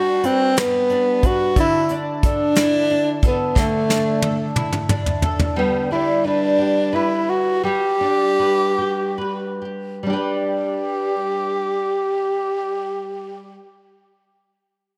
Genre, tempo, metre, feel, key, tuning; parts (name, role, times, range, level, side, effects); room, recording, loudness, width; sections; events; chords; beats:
six-eight pop ballad; 44-60 BPM (dotted quarters); 6/8; straight; G major; A4 = 440 Hz
breathy tenor saxophone; melody; 0.0-13.6 s; A3 to G4; -21 LUFS; equal; delay
nylon-string guitar; accompaniment; 0.0-13.7 s; D3 to B4; -27 LUFS; equal; double-tracked
soft brush drum kit; drums; 0.2-5.5 s; hi-hat, kick drum, snare drum, toms; -23 LUFS; equal
light reverb, small room ambience; -20 LUFS; mono
0.0-5.6 A section; 5.6-10.0 B section; 10.0-15.0 C section
drum fill 3.6-5.6; slowing down 5.6-10.0
0.0 G; 1.6 Dsus2; 5.6 G
0.56 | 1.56 2.56 | 3.56 4.56 | 5.56 6.57 | 7.63 8.78 | 10.05 11.40 | 12.75